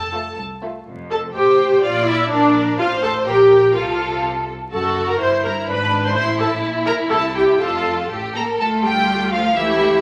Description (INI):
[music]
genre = quick classical-period movement for string orchestra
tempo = 125 BPM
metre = 2/4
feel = straight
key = F major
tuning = A4 = 440 Hz
[part]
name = rich studio violin section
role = melody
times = 0.0-10.0 s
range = D5 to C6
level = -27 LUFS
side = equal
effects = none
[part]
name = rich studio viola section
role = accompaniment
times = 0.0-10.0 s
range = A3 to C5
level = -19 LUFS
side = equal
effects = none
[part]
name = rich studio cello section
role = bass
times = 0.0-10.0 s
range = C2 to Bb3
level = -32 LUFS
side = equal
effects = none
[part]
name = rich studio double bass section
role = bass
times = 0.0-10.0 s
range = F1 to D2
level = -34 LUFS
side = equal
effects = none
[part]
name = rich studio violin section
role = second line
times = 0.1-10.0 s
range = A3 to D5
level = -25 LUFS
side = equal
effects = none
[sound]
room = wet large studio reverb, RT60 1.3 s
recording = vinyl crackle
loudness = -18 LUFS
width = mono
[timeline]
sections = 0.9-8.6 A section; 8.6-10.0 B section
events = none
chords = 0.0 F; 1.4 Am7; 1.8 Bb; 2.8 F/A; 3.3 Gm/Bb; 3.7 F/C; 4.7 Gbm; 5.2 Gm; 5.7 G#dim; 6.2 Am; 6.6 N.C.; 7.1 C; 7.6 F; 8.6 Dm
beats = 0.38 | 0.87 1.35 | 1.83 2.31 | 2.79 3.27 | 3.75 4.24 | 4.72 5.21 | 5.68 6.16 | 6.63 7.11 | 7.60 8.11 | 8.60 9.09 | 9.57